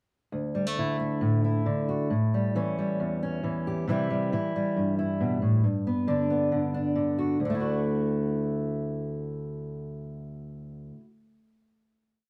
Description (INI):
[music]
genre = folk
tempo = 136 BPM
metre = 4/4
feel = straight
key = D major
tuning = A4 = 440 Hz
[part]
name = fingerpicked steel-string acoustic guitar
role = solo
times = 0.3-11.1 s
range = D2 to G4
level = -28 LUFS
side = equal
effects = none
[sound]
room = moderate studio reverb, RT60 0.8 s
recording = band playing live in one room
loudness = -28 LUFS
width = mono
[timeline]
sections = 0.3-7.4 verse; 7.4-10.9 final chord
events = none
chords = 0.3 Dsus2; 2.1 A7; 3.9 C; 5.6 G; 7.4 Dadd9